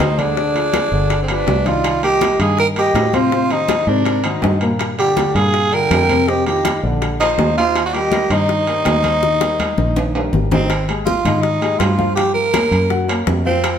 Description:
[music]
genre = Afro-Cuban jazz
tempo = 162 BPM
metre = 4/4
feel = straight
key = Eb major, Ab major from 10.7 s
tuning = A4 = 440 Hz
[part]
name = growling tenor saxophone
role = melody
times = 0.0-13.8 s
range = C4 to Bb4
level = -18 LUFS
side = right 2 dB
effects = none
[part]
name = reedy silver concert flute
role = second line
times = 0.0-10.3 s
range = Ab4 to G5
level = -26 LUFS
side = left 2 dB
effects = none
[part]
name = warm baby grand piano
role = accompaniment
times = 0.0-13.8 s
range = Bb2 to Gb5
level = -22 LUFS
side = left 3 dB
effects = none
[part]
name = fingered electric bass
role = bass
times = 0.0-13.8 s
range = G1 to A2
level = -21 LUFS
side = equal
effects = none
[part]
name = bongos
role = percussion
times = 0.0-13.8 s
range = none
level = -26 LUFS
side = left 7 dB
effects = none
[part]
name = congas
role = percussion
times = 0.0-13.8 s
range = none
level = -26 LUFS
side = left 3 dB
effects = none
[part]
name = timbales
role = percussion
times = 0.0-13.8 s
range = none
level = -24 LUFS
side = right 4 dB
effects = none
[sound]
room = wet stone room reverb, RT60 1.2 s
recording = band playing live in one room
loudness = -14 LUFS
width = side -8 dB against mid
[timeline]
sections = 0.0-10.7 A section; 10.7-13.8 B section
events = drum fill 9.2-10.7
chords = 0.4 Ddim; 1.1 G7; 1.8 Cm7; 3.3 Am7b5; 4.1 Ab9; 4.8 Gm7; 6.3 Fsus2; 7.0 Bb9; 7.8 Eb6; 10.7 Ab5; 12.2 Gm7b5; 12.9 Gb

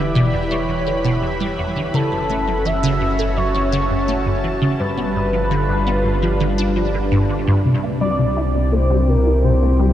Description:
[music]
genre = ambient, sequencer-driven space music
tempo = 84 BPM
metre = 4/4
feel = straight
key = G lydian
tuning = A4 = 440 Hz
[part]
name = pulse-width lead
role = melody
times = 0.0-9.9 s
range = A4 to E5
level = -23 LUFS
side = equal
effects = chorus, shimmer reverb, analog delay
[part]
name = lush unison pad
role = sustained chords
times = 0.0-9.9 s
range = C3 to B5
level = -22 LUFS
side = equal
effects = chorus, shimmer reverb
[part]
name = resonant blip pluck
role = riff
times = 0.0-9.9 s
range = E2 to E4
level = -21 LUFS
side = equal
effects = phaser, ensemble chorus, shimmer reverb, analog delay
[part]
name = warm sub bass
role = bass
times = 0.0-9.9 s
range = E1 to C2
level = -22 LUFS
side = equal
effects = none
[part]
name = bubbling stepped-filter texture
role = texture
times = 0.0-7.7 s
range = E5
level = -38 LUFS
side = right 2 dB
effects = none
[sound]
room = wet huge ambient reverb, RT60 8.4 s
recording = dark, warm production, lossy compression artefacts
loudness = -16 LUFS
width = side -11 dB against mid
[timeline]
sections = 0.0-7.7 A section; 7.7-9.9 B section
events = filter sweep on synth arpeggio sound 7.7-9.9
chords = 0.0 Em; 1.9 F#m; 4.8 G7; 7.7 C

